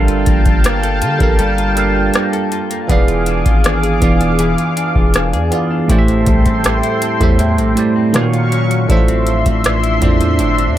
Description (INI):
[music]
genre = contemporary R&B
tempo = 80 BPM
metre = 4/4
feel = straight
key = D minor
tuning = A4 = 440 Hz
[part]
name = bell-like tine electric piano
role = accompaniment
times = 0.0-10.8 s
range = A2 to F5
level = -17 LUFS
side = right 4 dB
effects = phaser
[part]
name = lush unison pad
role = sustained chords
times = 0.0-10.8 s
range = Gb3 to D6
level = -20 LUFS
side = left 1 dB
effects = chorus
[part]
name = direct-recorded clean electric guitar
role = arpeggios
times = 0.0-10.8 s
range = A2 to A4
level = -22 LUFS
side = left 6 dB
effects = wide subtle chorus, digital delay
[part]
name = long sustained 808-style bass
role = bass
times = 0.0-10.8 s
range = E1 to D3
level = -18 LUFS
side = equal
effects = none
[part]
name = booming analog drum machine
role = drums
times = 0.1-10.8 s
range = hi-hat, kick drum, rim click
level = -15 LUFS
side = equal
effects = none
[sound]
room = little or no reverb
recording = none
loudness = -11 LUFS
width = side -12 dB against mid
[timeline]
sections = 0.0-10.8 A section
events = none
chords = 0.0 Gm9; 2.9 E7b9; 5.9 Am7; 8.1 Ebm9; 8.9 Dm9/A